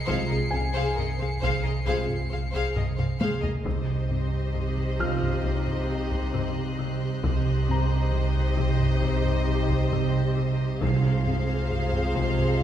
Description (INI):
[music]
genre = cinematic, suspense film score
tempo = 67 BPM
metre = 4/4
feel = straight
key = C phrygian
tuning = A4 = 440 Hz
[part]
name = pure sine sub bass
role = drone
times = 0.0-12.6 s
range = C2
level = -32 LUFS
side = left 1 dB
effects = none
[part]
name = rich studio violin section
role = texture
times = 0.0-10.3 s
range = C6 to Db7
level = -40 LUFS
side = left 2 dB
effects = none
[part]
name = clear studio violin section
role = melody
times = 0.1-12.6 s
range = Eb5 to F5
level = -36 LUFS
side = left 3 dB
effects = none
[part]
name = clear studio violin section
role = second line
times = 0.1-12.6 s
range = Bb4 to C5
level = -37 LUFS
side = left 1 dB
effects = none
[part]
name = warm studio viola section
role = accompaniment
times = 0.1-12.6 s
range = G4 to Ab4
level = -35 LUFS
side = left 1 dB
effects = none
[part]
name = dark trombone section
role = sustained chords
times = 0.1-12.6 s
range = C3 to Ab3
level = -37 LUFS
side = right 1 dB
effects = none
[part]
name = mellow French horn section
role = sustained chords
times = 0.1-12.6 s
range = C4 to F4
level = -35 LUFS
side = left 2 dB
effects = none
[part]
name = buzzing marimba with soft mallets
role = riff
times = 0.1-12.6 s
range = C3 to C4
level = -30 LUFS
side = right 2 dB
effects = none
[part]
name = warm studio cello section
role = bass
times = 0.1-12.6 s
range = C3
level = -32 LUFS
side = right 3 dB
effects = none
[part]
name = warm studio double bass section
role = bass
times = 0.1-12.6 s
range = C2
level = -32 LUFS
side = equal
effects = none
[part]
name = taiko ensemble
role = drums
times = 0.1-12.6 s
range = none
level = -32 LUFS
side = equal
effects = none
[part]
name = felt-muted upright piano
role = texture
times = 0.5-10.8 s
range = F4 to F6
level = -35 LUFS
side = left 1 dB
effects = none
[part]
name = timpani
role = percussion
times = 10.8-12.1 s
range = C3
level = -34 LUFS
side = right 1 dB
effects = none
[sound]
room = wet recital hall reverb, RT60 1.5 s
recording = recorded in a church or concert hall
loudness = -23 LUFS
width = side -10 dB against mid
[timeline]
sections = 0.0-12.6 A section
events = drum fill 2.8-3.7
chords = 0.0 Fm/C; 3.7 Cm; 10.8 Fm/C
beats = | 0.07 0.96 1.86 2.75 | 3.65 4.55 5.44 6.34 | 7.23 8.13 9.02 9.92 | 10.81 11.71 12.61